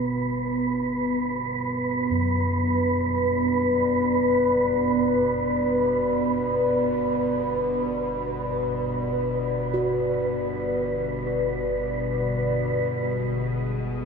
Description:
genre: dark ambient drone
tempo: free time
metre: none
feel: none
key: G major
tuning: A4 = 440 Hz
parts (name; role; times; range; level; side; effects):
- dark analog pad; sustained chords; 0.0-14.1 s; B3 to D5; -24 LUFS; equal; chorus, phaser
- bowed-like drone; drone; 0.0-14.1 s; G1 to B2; -31 LUFS; left 2 dB; built-in reverb
- wind-like tuned noise texture; texture; 0.0-14.1 s; B4 to D#5; -28 LUFS; right 4 dB; built-in reverb
- gamelan-type bossed gongs; arpeggios; 2.1-14.1 s; F#2 to F#4; -32 LUFS; equal; analog delay
room: wet plate reverb, RT60 2.8 s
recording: echo-heavy mix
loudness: -22 LUFS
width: side -5 dB against mid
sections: 0.0-14.1 A section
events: fade-in on synth drone 0.0-14.1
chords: 0.0 G; 12.8 Emaj7 (rootless)

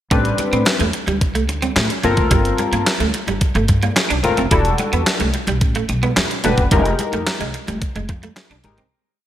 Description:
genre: early-eighties boogie funk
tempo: 109 BPM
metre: 4/4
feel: straight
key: unclear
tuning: A4 = 440 Hz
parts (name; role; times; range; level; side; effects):
- chorused polysynth; accompaniment; 0.1-8.8 s; G3 to B4; -20 LUFS; left 3 dB; none
- electric guitar at the edge of break-up; riff; 0.1-8.9 s; G3 to E4; -24 LUFS; right 4 dB; ensemble chorus
- upright bass; bass; 0.1-8.9 s; E1 to A2; -21 LUFS; equal; none
- crisp 8-bit digital drum machine; drums; 0.1-8.9 s; handclaps, hi-hat, kick drum, snare drum; -19 LUFS; equal; none
- congas; percussion; 0.1-8.8 s; none; -30 LUFS; left 2 dB; none
room: light reverb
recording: bright 1980s-style digital production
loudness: -15 LUFS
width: side -12 dB against mid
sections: 0.1-8.9 breakdown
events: fade-out 6.7-8.9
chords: 0.1 Am11; 2.0 Gm11; 4.5 Em11; 6.7 Fm11

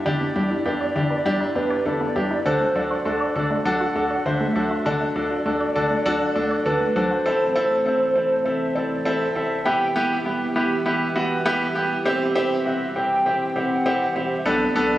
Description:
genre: synth-pop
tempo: 100 BPM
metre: 4/4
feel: straight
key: E minor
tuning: A4 = 440 Hz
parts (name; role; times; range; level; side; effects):
- hollow clarinet-like synth lead; melody; 0.0-15.0 s; B4 to G5; -24 LUFS; right 1 dB; chorus, tape echo
- clear baby grand piano; accompaniment; 0.1-14.9 s; B3 to C5; -22 LUFS; equal; none
- resonant blip pluck; arpeggios; 0.1-7.2 s; D3 to D5; -27 LUFS; equal; chorus, phaser, tape echo
- rubbery square bass; bass; 0.1-15.0 s; E1 to E2; -36 LUFS; equal; none
- chorused pulse-width pad; sustained chords; 7.3-15.0 s; E3 to G4; -28 LUFS; right 1 dB; none
room: wet lush hall reverb, RT60 2.6 s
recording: recorded on a phone in the room, club reverb, compression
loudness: -20 LUFS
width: side -14 dB against mid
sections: 0.0-7.3 A section; 7.3-15.0 B section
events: none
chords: 0.0 Em7; 2.5 D; 7.3 Am; 9.7 Em; 12.1 C/E; 14.5 Bm7

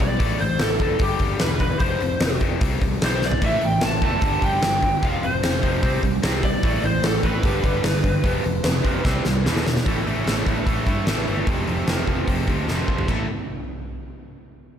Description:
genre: hard rock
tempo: 149 BPM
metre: 4/4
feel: straight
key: A minor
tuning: A4 = 440 Hz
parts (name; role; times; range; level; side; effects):
- lead guitar through a small cranked amp; melody; 0.0-9.4 s; G4 to A5; -25 LUFS; left 1 dB; overdrive
- tight distorted guitar; riff; 0.0-13.3 s; E2 to C4; -28 LUFS; left 7 dB; distortion
- fingered electric bass; bass; 0.0-13.3 s; E1 to G2; -26 LUFS; equal; none
- huge arena drum kit; drums; 0.0-13.2 s; crash cymbal, hi-hat, kick drum, snare drum, splash cymbal, toms; -23 LUFS; equal; none
- distorted electric guitar; riff; 3.4-13.2 s; E2 to C4; -27 LUFS; right 8 dB; distortion, slapback echo
room: moderate recital hall reverb, RT60 1.5 s, small room ambience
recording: big arena sound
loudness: -19 LUFS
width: side -9 dB against mid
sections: 0.0-9.9 A section; 9.9-13.1 B section; 13.1-14.7 C section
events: drum fill 3.2, 9.0-9.9, 12.7-13.1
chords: 0.2 A5; 1.0 G5; 1.8 F5; 2.6 C5; 3.4 A5; 4.2 G5; 5.0 F5; 5.8 C5; 6.6 A5; 7.4 G; 8.2 F5; 9.0 C5; 9.4 E5; 9.9 A5; 11.5 F5; 13.1 A5

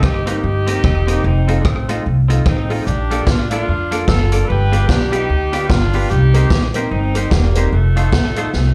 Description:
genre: ska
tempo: 148 BPM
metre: 4/4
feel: swing 58% on 8ths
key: unclear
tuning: A4 = 437 Hz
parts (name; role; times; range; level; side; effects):
- warm horn section; melody; 0.0-8.7 s; F3 to B4; -24 LUFS; equal; slapback echo
- upright bass; bass; 0.0-8.7 s; E1 to F2; -19 LUFS; equal; none
- swinging big-band drum kit; drums; 0.0-8.6 s; hi-hat, kick drum, rim click, snare drum; -20 LUFS; equal; slapback echo
- semi-hollow electric guitar; accompaniment; 0.3-8.5 s; A3 to Eb5; -29 LUFS; equal; slapback echo
- dark upright piano; stabs; 0.3-8.5 s; A3 to Bb4; -28 LUFS; equal; slapback echo
room: light reverb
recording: live gig heard through the venue's PA, club reverb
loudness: -16 LUFS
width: mono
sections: 0.0-8.7 A section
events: drum fill 8.5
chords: 0.0 Cm7; 1.2 F7; 2.9 Bbmaj7; 4.5 G7; 6.1 Cm7; 7.7 F7

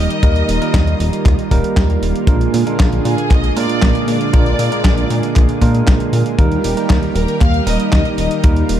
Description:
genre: italo disco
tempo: 117 BPM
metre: 4/4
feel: straight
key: unclear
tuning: A4 = 441 Hz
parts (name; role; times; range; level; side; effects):
- rich symphonic violin section; melody; 0.0-8.4 s; Ab4 to F6; -22 LUFS; left 2 dB; tape echo
- lush unison pad; sustained chords; 0.0-8.8 s; D3 to Bb4; -21 LUFS; right 1 dB; chorus
- bell-like tine electric piano; stabs; 0.0-8.8 s; Bb2 to Bb4; -20 LUFS; right 4 dB; none
- chorused synth bass; bass; 0.0-8.8 s; Eb1 to Bb2; -17 LUFS; equal; none
- detuned 8-bit digital drum machine; drums; 0.1-8.8 s; handclaps, hi-hat, snare drum; -24 LUFS; equal; small room ambience
- kick drum; drums; 0.2-8.5 s; none; -14 LUFS; equal; small room ambience
room: light reverb, studio reverb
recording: dark, warm production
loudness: -12 LUFS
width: side -10 dB against mid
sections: 0.0-8.8 A section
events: none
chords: 0.0 Eb; 2.3 Bb7; 6.4 Eb

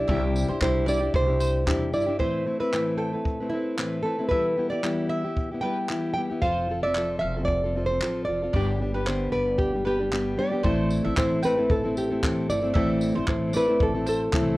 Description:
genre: acoustic pop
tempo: 114 BPM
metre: 4/4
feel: swing 55% on 16ths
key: unclear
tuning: A4 = 439 Hz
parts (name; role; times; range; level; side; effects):
- nylon-string guitar; melody; 0.0-14.6 s; E4 to G5; -27 LUFS; right 1 dB; plate reverb
- fingerpicked plugged-in steel-string acoustic guitar; accompaniment; 0.0-14.6 s; G2 to B4; -27 LUFS; left 1 dB; none
- upright bass; bass; 0.0-2.2, 6.4-14.6 s; F1 to E2; -30 LUFS; equal; none
- bowl-back mandolin; arpeggios; 0.1-14.2 s; B4 to G5; -36 LUFS; right 2 dB; none
- jazz brush drum kit; drums; 0.1-14.5 s; handclaps, kick drum, tambourine; -29 LUFS; equal; none
room: moderate studio reverb, RT60 0.6 s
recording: worn, warbling old tape, cassette tape, warbly pitch drift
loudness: -22 LUFS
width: side -19 dB against mid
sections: 0.0-2.2 A section; 2.2-10.6 B section; 10.6-14.6 A section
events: none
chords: 0.0 Cadd9; 2.2 Amadd9; 4.3 Em; 6.4 F; 8.5 G; 10.6 Am

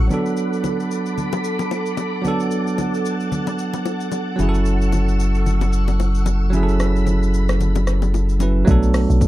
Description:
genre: amapiano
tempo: 112 BPM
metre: 4/4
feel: swing 58% on 16ths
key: B minor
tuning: A4 = 441 Hz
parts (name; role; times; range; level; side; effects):
- bell-like tine electric piano; accompaniment; 0.0-9.3 s; F#3 to B4; -22 LUFS; right 3 dB; none
- ensemble organ-string; sustained chords; 0.0-8.7 s; A4 to E6; -28 LUFS; left 1 dB; ensemble chorus, sidechain pumping
- deep log drum bass; bass; 0.0-0.1, 8.7-9.3 s; B1; -16 LUFS; equal; none
- deep house drum kit; drums; 0.1-9.3 s; hi-hat, kick drum, rim click, shaker; -25 LUFS; left 1 dB; none
- congas and bongos; percussion; 0.1-8.5 s; none; -28 LUFS; left 5 dB; none
- saturated sub bass; bass; 4.4-8.6 s; F#1; -18 LUFS; equal; none
room: little or no reverb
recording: dark, warm production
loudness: -17 LUFS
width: side -15 dB against mid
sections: 0.1-8.7 A section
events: none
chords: 0.1 Bm7; 4.4 F#m7; 8.7 Bm7

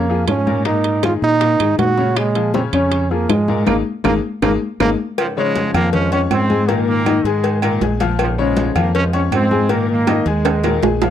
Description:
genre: latin, salsa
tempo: 159 BPM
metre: 4/4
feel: straight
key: Bb minor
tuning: A4 = 440 Hz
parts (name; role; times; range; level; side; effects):
- bright trombone; melody; 0.0-4.9 s; Ab3 to Gb4; -18 LUFS; right 4 dB; none
- bright upright piano; accompaniment; 0.0-11.1 s; Bb2 to Db6; -20 LUFS; left 8 dB; none
- fingered electric bass; bass; 0.0-11.1 s; Ab1 to Bb2; -20 LUFS; right 1 dB; none
- congas; percussion; 0.1-11.1 s; none; -24 LUFS; left 2 dB; none
- bongos and cowbell; percussion; 0.3-11.1 s; none; -26 LUFS; left 9 dB; none
- claves; percussion; 0.3-10.8 s; none; -30 LUFS; right 23 dB; none
- timbales and agogo bells; percussion; 0.3-11.1 s; none; -23 LUFS; right 10 dB; none
- brilliant trombone section; melody; 5.2-11.0 s; Ab2 to Db4; -20 LUFS; right 3 dB; none
room: light reverb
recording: dry, close 1970s-style studio recording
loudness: -14 LUFS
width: side -10 dB against mid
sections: 0.0-5.2 A section; 5.2-11.1 B section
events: band accent 3.7-5.2; drum fill 4.6-5.2, 10.1-11.1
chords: 0.0 Bbm7; 0.7 Absus2; 2.2 Bbm7; 3.7 Absus2; 5.2 Bbm9 (rootless); 6.7 Absus2; 8.2 Bbm7; 9.7 Absus2

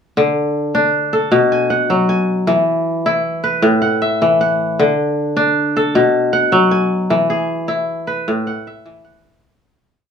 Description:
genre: west african traditional, West African string and xylophone music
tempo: 104 BPM (dotted quarters)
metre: 12/8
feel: straight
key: D lydian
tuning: A4 = 441 Hz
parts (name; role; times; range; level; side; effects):
- kora; solo; 0.2-10.0 s; A2 to G#5; -14 LUFS; left 1 dB; none
room: wet studio reverb, RT60 0.6 s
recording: none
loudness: -14 LUFS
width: side -7 dB against mid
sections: 0.2-9.4 A section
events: fade-out 7.1-9.4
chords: 0.2 D5; 1.3 B5; 2.5 E; 3.6 A5; 4.8 D; 5.9 B5; 7.1 E; 8.3 A5

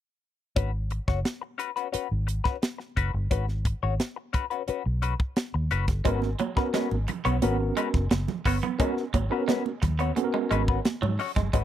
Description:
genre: funk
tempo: 88 BPM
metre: 4/4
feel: straight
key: G# minor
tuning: A4 = 439 Hz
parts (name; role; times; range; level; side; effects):
- clean electric guitar; accompaniment; 0.6-11.6 s; C#4 to C#5; -30 LUFS; left 12 dB; wah
- vintage muted fingered electric bass; bass; 0.6-11.6 s; F#1 to G#2; -27 LUFS; equal; none
- crisp fusion drum kit; drums; 0.6-11.6 s; hi-hat, kick drum, snare drum; -28 LUFS; equal; none
- tine electric piano; stabs; 6.0-10.8 s; B3 to A#4; -28 LUFS; right 3 dB; overdrive, fast stereo tremolo
- clean electric guitar; riff; 6.1-11.6 s; F#3 to B3; -32 LUFS; right 7 dB; spring reverb
- congas; percussion; 6.2-11.5 s; none; -32 LUFS; right 7 dB; none
room: little or no reverb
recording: dry, close 1970s-style studio recording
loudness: -25 LUFS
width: side -11 dB against mid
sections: 0.6-6.1 A section; 6.1-11.6 B section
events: none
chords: 0.6 G#m7; 6.1 G#m11

